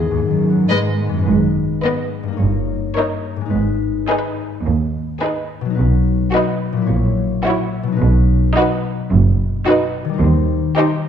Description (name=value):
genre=cinematic, playful, whimsical film cue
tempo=107 BPM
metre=4/4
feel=straight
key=G# minor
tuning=A4 = 438 Hz
part: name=mellow clarinet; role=second line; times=0.0-0.6 s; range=G#4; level=-24 LUFS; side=left 5 dB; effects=none
part: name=concert harp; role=arpeggios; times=0.0-11.1 s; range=G2 to C#5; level=-21 LUFS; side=left 7 dB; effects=none
part: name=dark symphonic cello section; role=bass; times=0.0-10.7 s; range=D#2 to B2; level=-20 LUFS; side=right 3 dB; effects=none
part: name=rich chamber violin section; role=melody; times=0.7-11.1 s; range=B4 to D#5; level=-25 LUFS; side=left 4 dB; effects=none
part: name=rich symphonic violin section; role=second line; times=0.7-11.1 s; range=F#4 to B4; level=-24 LUFS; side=left 1 dB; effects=none
part: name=rich symphonic viola section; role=accompaniment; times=0.7-11.1 s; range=G#3 to E4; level=-21 LUFS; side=right 3 dB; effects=none
part: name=rich chamber double bass section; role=bass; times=1.3-10.7 s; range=F#1 to D#2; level=-19 LUFS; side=right 3 dB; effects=none
room=wet scoring stage reverb, RT60 1.7 s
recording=dark, warm production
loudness=-15 LUFS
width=side -8 dB against mid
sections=0.0-1.3 A section; 1.3-11.1 B section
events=none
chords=0.0 G#m; 2.4 D#7/G; 3.5 G#m; 5.8 B; 6.9 F#7/A#; 8.0 B; 10.2 Cm/Eb